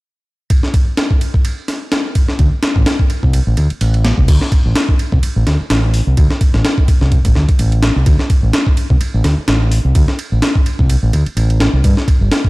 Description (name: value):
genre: breakbeat, breaks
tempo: 127 BPM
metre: 4/4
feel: swing 56% on 16ths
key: unclear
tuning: A4 = 440 Hz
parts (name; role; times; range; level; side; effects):
- breakbeat sampler-style drum kit; drums; 0.5-12.5 s; crash cymbal, hi-hat, kick drum, ride cymbal, snare drum; -13 LUFS; equal; none
- growling fingered electric bass; bass; 2.4-12.3 s; G1 to G2; -13 LUFS; equal; overdrive, tube saturation
room: digital ambience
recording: dark, warm production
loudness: -11 LUFS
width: side -22 dB against mid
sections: 0.5-4.3 A section; 4.3-12.5 B section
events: none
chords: none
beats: | 0.50 0.98 1.45 1.92 | 2.39 2.87 3.34 3.81 | 4.28 4.75 5.23 5.70 | 6.17 6.64 7.12 7.59 | 8.06 8.54 9.01 9.48 | 9.95 10.43 10.90 11.37 | 11.84 12.31